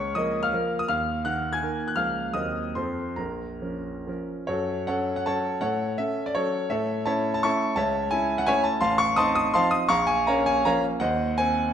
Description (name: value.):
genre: classical, romantic triple-time dance for piano with dotted rhythms.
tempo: 128-183 BPM.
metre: 3/4.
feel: rubato.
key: Bb minor, F# minor from 4.5 s.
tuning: A4 = 440 Hz.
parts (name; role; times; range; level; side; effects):
clear grand piano; solo; 0.0-11.7 s; A1 to Ab6; -23 LUFS; equal; none.
room: wet recital hall reverb, RT60 1.3 s.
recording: dark, warm production.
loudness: -23 LUFS.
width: side -9 dB against mid.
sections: 0.0-4.5 A section; 4.5-11.7 B section.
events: none.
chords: 0.0 Bbm/Db; 0.9 Ebm; 2.0 Bbm/Db; 2.3 Cm7b5/Eb; 2.8 F; 3.2 Bbm; 4.5 F#m; 5.6 F#m/A; 6.7 A; 7.8 A/C#; 8.8 F7/A; 9.9 Bbm; 11.0 Cdim/Eb.